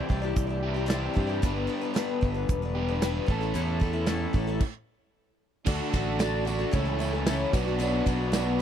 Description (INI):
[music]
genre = folk rock and heartland rock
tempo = 113 BPM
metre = 4/4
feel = straight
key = D major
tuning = A4 = 440 Hz
[part]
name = picked twelve-string acoustic guitar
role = accompaniment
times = 0.0-8.6 s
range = A2 to D5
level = -31 LUFS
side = left 7 dB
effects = none
[part]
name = crunchy overdriven guitar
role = riff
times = 0.0-8.6 s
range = G2 to A4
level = -32 LUFS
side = right 2 dB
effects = none
[part]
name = fingered electric bass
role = bass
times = 0.1-8.6 s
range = E1 to G2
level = -30 LUFS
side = right 1 dB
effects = none
[part]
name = natural country drum kit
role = drums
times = 0.1-8.5 s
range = crash cymbal, hi-hat, kick drum, ride cymbal, snare drum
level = -28 LUFS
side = right 1 dB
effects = none
[part]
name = mellow reed electric piano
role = accompaniment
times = 5.7-8.6 s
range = E4 to D5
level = -36 LUFS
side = right 10 dB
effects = fast tremolo
[part]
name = hand-pumped harmonium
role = sustained chords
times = 5.7-8.6 s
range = C#4 to D5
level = -39 LUFS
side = right 6 dB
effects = none
[part]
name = tambourine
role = percussion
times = 5.7-8.5 s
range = none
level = -47 LUFS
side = right 8 dB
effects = none
[sound]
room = small room ambience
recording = dry, close 1970s-style studio recording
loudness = -25 LUFS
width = side -9 dB against mid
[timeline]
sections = 0.0-5.7 A section; 5.7-8.6 B section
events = stop 4.6-5.7; reed electric piano fill 8.3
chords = 0.0 Cadd9; 1.4 G; 3.3 A; 5.7 D; 6.7 A/C#; 7.5 Bm